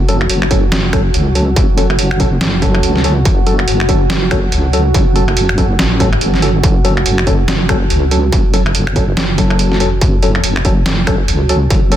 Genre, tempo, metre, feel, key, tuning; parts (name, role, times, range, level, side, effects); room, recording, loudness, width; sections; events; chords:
deep dubstep; 142 BPM; 4/4; swing 59% on 16ths, half-time; F# minor; A4 = 441 Hz
deep dark ambient pad; sustained chords; 0.0-12.0 s; F#4; -21 LUFS; right 2 dB; chorus, built-in reverb
deep soft wobble bass; bass; 0.0-12.0 s; F#1 to C#2; -15 LUFS; equal; chorus
percussive organ stab; stabs; 0.1-12.0 s; F#3 to A4; -19 LUFS; left 2 dB; wide subtle chorus, dub echo
trip hop sampler-style drum kit; drums; 0.1-12.0 s; finger snaps, hi-hat, snare drum; -18 LUFS; right 1 dB; overdrive
electronic kick drum; drums; 0.5-11.8 s; -15 LUFS; equal; distortion
light reverb; dense, heavily limited modern master; -10 LUFS; side -11 dB against mid
0.0-12.0 A section
0.0 F#m